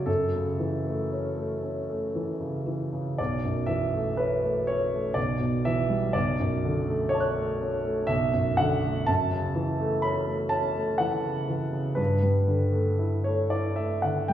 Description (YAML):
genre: classical, impressionist solo piano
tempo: 57-64 BPM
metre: 3/4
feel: rubato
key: B minor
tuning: A4 = 439 Hz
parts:
  - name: clear grand piano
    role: solo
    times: 0.0-14.3 s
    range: B1 to F#6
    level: -24 LUFS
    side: equal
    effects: none
room: wet recital hall reverb, RT60 1.7 s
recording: heard from further back in the room, studio ambience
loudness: -24 LUFS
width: side -11 dB against mid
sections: 0.0-14.3 A section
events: none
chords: 0.1 F#m7; 3.2 B9sus4; 5.2 Em7/B; 6.2 Bm9; 8.1 D/B; 9.1 F#m7; 12.0 G69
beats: | 0.07 1.12 2.16 | 3.19 4.18 5.17 | 6.15 7.13 8.10 | 9.09 10.06 11.00 | 11.99 13.01 14.04